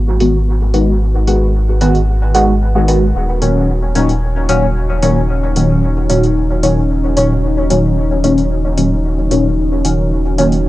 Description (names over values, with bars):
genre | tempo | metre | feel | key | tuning
dub techno | 112 BPM | 4/4 | straight | unclear | A4 = 440 Hz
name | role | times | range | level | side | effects
deep dark ambient pad | sustained chords | 0.0-10.7 s | B3 to G#4 | -22 LUFS | left 1 dB | chorus, built-in reverb
warm sub bass | bass | 0.0-10.7 s | D#1 to G#1 | -15 LUFS | equal | tube saturation
deep mellow chord stab | stabs | 0.2-10.5 s | A#2 to F#4 | -14 LUFS | equal | chorus, phaser, dub echo
electronic hi-hat | drums | 0.2-10.6 s | none | -25 LUFS | left 1 dB | low-pass filter on hats
room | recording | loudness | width
light reverb | dry, gritty hardware recording, cassette tape | -11 LUFS | side -16 dB against mid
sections
0.0-10.7 A section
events
filter sweep on ambient pad 0.0-10.7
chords
0.0 G#m7; 3.1 D#m7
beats
0.47 | 1.01 1.54 2.08 2.62 | 3.15 3.69 4.22 4.76 | 5.29 5.83 6.37 6.90 | 7.44 7.97 8.51 9.04 | 9.58 10.12 10.65